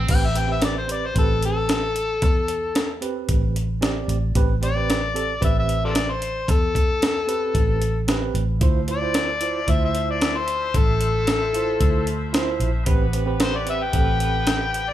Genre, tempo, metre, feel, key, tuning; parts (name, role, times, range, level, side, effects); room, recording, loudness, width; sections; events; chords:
straight-eighth soul blues; 113 BPM; 4/4; straight; A minor; A4 = 440 Hz
brilliant horn section; sustained chords; 0.0, 8.6-14.9 s; F3 to E5; -34 LUFS; left 2 dB
vintage muted fingered electric bass; bass; 0.0-14.9 s; A1 to E2; -25 LUFS; equal
overdriven harmonica; melody; 0.1-14.9 s; F4 to G5; -24 LUFS; left 3 dB
tine electric piano; accompaniment; 0.1-14.6 s; C4 to D5; -28 LUFS; right 7 dB; medium tremolo
breakbeat sampler-style drum kit; drums; 0.1-14.9 s; crash cymbal, hi-hat, kick drum, snare drum; -22 LUFS; equal
light reverb; band playing live in one room; -19 LUFS; side -12 dB against mid
0.1-14.9 A section
harmonica solo 0.1-14.9
0.1 Am9; 8.6 Dm9; 12.9 Am9